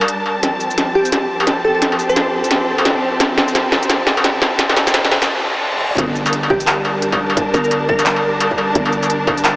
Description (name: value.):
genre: half-time drum and bass.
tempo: 173 BPM.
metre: 4/4.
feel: swing 60% on 16ths, half-time.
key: G minor.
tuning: A4 = 440 Hz.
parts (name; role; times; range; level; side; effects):
warm symphonic string section; sustained chords; 0.0-9.6 s; F3 to A5; -19 LUFS; equal; sidechain pumping.
industrial drum kit; drums; 0.0-9.5 s; handclaps, hi-hat, shaker, snare drum, struck metal, toms; -16 LUFS; equal; none.
glassy wavetable pluck; melody; 1.0-2.4, 6.5-8.2 s; G4 to C5; -21 LUFS; equal; chorus, tape echo.
reverse cymbal; sound effects; 5.5-6.0 s; none; -28 LUFS; left 1 dB; none.
growling 808-style bass; bass; 6.0-9.6 s; G1; -24 LUFS; equal; none.
electronic kick drum; drums; 6.0-9.4 s; none; -23 LUFS; equal; distortion.
room: wet huge ambient reverb, RT60 7.7 s.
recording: dreamy mix soaked in reverb, high-pass filter, small speaker sound.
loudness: -13 LUFS.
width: side -22 dB against mid.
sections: 0.0-6.0 A section; 6.0-9.6 B section.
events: build-up 0.0-6.0; filter sweep 0.0-6.0; drum fill 0.4-5.3, 5.7; break 5.3-6.0; reverse cymbal 5.5-6.0; drop 6.0-9.6.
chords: 0.4 F; 6.0 Gm.